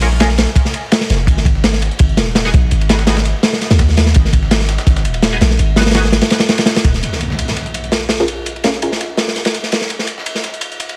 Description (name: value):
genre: drum and bass, jungle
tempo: 167 BPM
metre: 4/4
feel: straight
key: Bb phrygian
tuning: A4 = 440 Hz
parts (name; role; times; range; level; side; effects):
- band-passed chord stab; stabs; 0.0-0.3, 2.5-3.2, 5.3-6.0, 8.2-8.9 s; Cb4 to Bb4; -25 LUFS; equal; phaser, analog chorus, dub echo
- long sustained 808-style bass; bass; 0.0-7.0 s; Eb1 to Eb2; -17 LUFS; equal; tube saturation
- crunchy breakbeat drum kit; drums; 0.0-11.0 s; kick drum, ride cymbal, snare drum; -16 LUFS; equal; high-pass filter on kick, high-pass filter on cymbals, high-pass filter on hats, high-pass filter on snare, high-pass filter on room
- dusty soul sampler-style drum kit; drums; 0.0-10.9 s; hi-hat, snare drum; -31 LUFS; equal; none
- impact; sound effects; 7.0-8.5 s; none; -26 LUFS; equal; none
room: studio ambience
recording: vinyl crackle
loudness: -14 LUFS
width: mono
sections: 0.0-7.0 A section; 7.0-11.0 B section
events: drop 0.0-7.0; impact 7.0-8.5; filter sweep on synth stab 7.0-11.0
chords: 0.0 Bbm7; 1.3 Abm7; 7.0 Bbm7